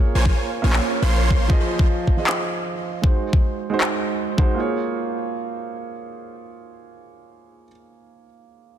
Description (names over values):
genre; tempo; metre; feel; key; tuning
future bass; 156 BPM; 4/4; swing 54% on 16ths, half-time; Bb minor; A4 = 440 Hz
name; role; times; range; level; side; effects
warm grand piano; accompaniment; 0.0-8.8 s; F3 to Eb5; -26 LUFS; right 4 dB; sidechain pumping, digital delay
supersaw chords; riff; 0.2-1.5 s; Bb3 to C6; -27 LUFS; right 2 dB; sidechain pumping, digital delay
warm 808-style bass; bass; 0.2-1.5 s; Bb1; -19 LUFS; equal; sidechain pumping
electronic kick drum; drums; 0.3-4.5 s; none; -18 LUFS; equal; overdrive
electronic handclaps; drums; 0.7-3.9 s; none; -25 LUFS; left 1 dB; soft clipping on snare
room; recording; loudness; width
light reverb, digital ambience; dense, heavily limited modern master; -19 LUFS; side -10 dB against mid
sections
0.0-4.6 A section; 4.6-7.7 B section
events
none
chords
0.0 Bbm7; 1.5 Fm7; 3.0 Ab7; 4.6 Bbm7